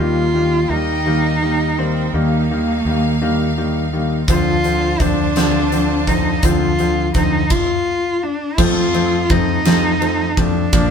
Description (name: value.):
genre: six-eight pop ballad.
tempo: 56 BPM (dotted quarters).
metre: 6/8.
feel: straight.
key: unclear.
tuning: A4 = 439 Hz.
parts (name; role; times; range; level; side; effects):
warm cello; melody; 0.0-10.9 s; Bb3 to F4; -19 LUFS; equal; none.
felt-muted upright piano; accompaniment; 0.0-10.9 s; D3 to D4; -19 LUFS; left 1 dB; none.
clear studio string section; sustained chords; 0.0-7.5 s; Eb4 to A5; -27 LUFS; equal; none.
mellow fretless electric bass; bass; 0.0-10.9 s; Bb1 to F2; -22 LUFS; right 1 dB; none.
huge arena drum kit; drums; 4.3-10.9 s; crash cymbal, hi-hat, kick drum, ride cymbal, snare drum; -19 LUFS; equal; none.
room: moderate studio reverb, RT60 0.5 s.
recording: band playing live in one room.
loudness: -14 LUFS.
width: side -7 dB against mid.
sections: 0.0-8.6 A section; 8.6-10.9 B section.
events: stop 7.5-8.6.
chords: 0.0 Eb; 4.3 Dm7; 8.6 F.